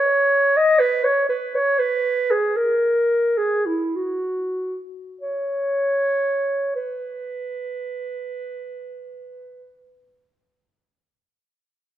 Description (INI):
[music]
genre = classical, free, expressive piece for unaccompanied clarinet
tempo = 33-65 BPM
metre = 4/4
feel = rubato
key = B major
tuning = A4 = 442 Hz
[part]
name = dark clarinet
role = solo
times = 0.0-9.8 s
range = E4 to D#5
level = -20 LUFS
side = equal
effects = none
[sound]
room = moderate recital hall reverb, RT60 1.5 s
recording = none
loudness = -19 LUFS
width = side -12 dB against mid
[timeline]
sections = 0.0-6.8 A section; 6.8-12.0 B section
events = slowing down 0.0-6.8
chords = none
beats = 0.79 | 1.77 2.81 3.94 5.21 | 6.77 8.13 9.49